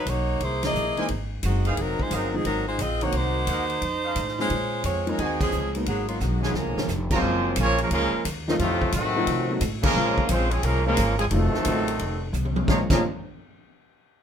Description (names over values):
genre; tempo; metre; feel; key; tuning
jazz, big band swing; 176 BPM; 4/4; swing 65% on 8ths; Bb minor, Bb harmonic minor from 7.2 s; A4 = 436 Hz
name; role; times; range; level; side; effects
bright saxophone section; melody; 0.0-6.9 s; Eb3 to Eb5; -26 LUFS; equal; none
clear trumpet section; stabs; 0.0-7.2 s; Db4 to Bb5; -33 LUFS; right 2 dB; none
upright bass; bass; 0.1-13.0 s; F1 to C3; -27 LUFS; equal; none
swinging big-band drum kit; drums; 0.1-13.0 s; crash cymbal, hi-hat, kick drum, ride cymbal, snare drum, toms; -30 LUFS; equal; none
clear baby grand piano; accompaniment; 1.0-13.0 s; Eb3 to Gb4; -29 LUFS; left 1 dB; none
bright trombone section; second line; 6.5-13.0 s; A2 to Db4; -28 LUFS; right 1 dB; none
clear trumpet section; melody; 7.1-13.0 s; Gb3 to Bb5; -26 LUFS; equal; none
room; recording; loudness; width
moderate club reverb, RT60 0.8 s; minimal, uncompressed stereo recording; -22 LUFS; side -8 dB against mid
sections
0.0-7.2 A section; 7.2-12.7 B section; 12.7-14.0 C section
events
band accent 0.6, 5.4, 9.8; drum fill 6.2-6.9, 12.3-12.7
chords
0.4 C7alt; 1.8 Fm7; 3.1 Cm7b5; 3.8 F7b13; 4.5 Bbm11; 5.9 Abm7; 6.5 Db7; 7.2 Gbmaj9; 8.6 F7b9; 10.0 Bbm9; 11.3 F7b9; 12.7 Bbm9